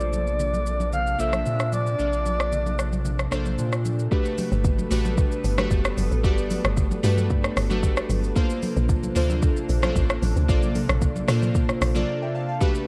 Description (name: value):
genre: amapiano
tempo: 113 BPM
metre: 4/4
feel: straight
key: unclear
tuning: A4 = 440 Hz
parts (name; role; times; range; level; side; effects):
- breathy flute-like synth lead; melody; 0.0-3.3 s; D5 to F5; -30 LUFS; equal; chorus, tremolo, low-pass filter, tape echo
- glassy digital keys; accompaniment; 0.0-12.9 s; A3 to A5; -31 LUFS; equal; chorus, low-pass filter
- glassy FM pad; sustained chords; 0.0-12.9 s; C3 to B4; -35 LUFS; equal; ensemble chorus, built-in reverb, sidechain pumping, low-pass filter
- saturated sub bass; bass; 0.0-4.1 s; Bb1 to Bb2; -28 LUFS; equal; none
- afro-pop drum kit; drums; 0.0-12.9 s; hi-hat, kick drum, rim click, shaker; -28 LUFS; equal; none
- congas; percussion; 0.1-12.1 s; none; -35 LUFS; equal; none
- deep log drum bass; bass; 4.5-12.0 s; F#1 to Bb2; -26 LUFS; equal; none
room: little or no reverb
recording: worn, warbling old tape, cassette tape, warbly pitch drift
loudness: -23 LUFS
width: mono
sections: 0.0-4.1 A section; 4.1-12.9 B section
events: drop 4.1-12.9; break 12.1-12.6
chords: 0.0 Bbmaj9; 4.1 Gmaj9; 8.4 Bbmaj9